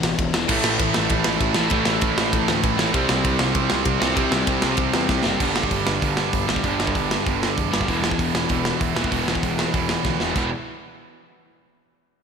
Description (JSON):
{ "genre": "punk rock", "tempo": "194 BPM", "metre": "4/4", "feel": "straight", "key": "E minor", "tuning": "A4 = 441 Hz", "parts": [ { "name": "overdriven semi-hollow guitar", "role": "riff", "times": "0.0-10.5 s", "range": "E2 to C4", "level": "-25 LUFS", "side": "left 6 dB", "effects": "slapback echo" }, { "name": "fuzz picked electric bass", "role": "bass", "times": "0.0-10.5 s", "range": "E1 to E2", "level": "-28 LUFS", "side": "equal", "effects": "overdrive" }, { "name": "tight metal drum kit", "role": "drums", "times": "0.0-10.4 s", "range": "crash cymbal, hi-hat, kick drum, ride cymbal, snare drum", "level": "-23 LUFS", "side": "right 1 dB", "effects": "none" }, { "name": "tight distorted guitar", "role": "riff", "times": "0.5-10.5 s", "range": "E2 to C4", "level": "-24 LUFS", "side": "right 12 dB", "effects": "distortion, slapback echo" } ], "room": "moderate lush hall reverb, RT60 2.4 s", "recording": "big arena sound", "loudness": "-19 LUFS", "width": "side -6 dB against mid", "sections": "0.0-5.4 A section; 5.4-10.4 B section; 10.4-11.6 C section", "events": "drum fill 5.1-5.4, 10.0-10.4", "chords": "0.5 A5; 2.9 C5; 5.4 G5; 7.9 E5", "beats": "0.19 | 0.49 0.80 1.10 1.41 | 1.72 2.02 2.33 2.64 | 2.94 3.25 3.56 3.86 | 4.17 4.48 4.79 5.09 | 5.40 5.71 6.02 6.33 | 6.64 6.95 7.25 7.56 | 7.87 8.18 8.49 8.80 | 9.11 9.42 9.73 10.04 | 10.35" }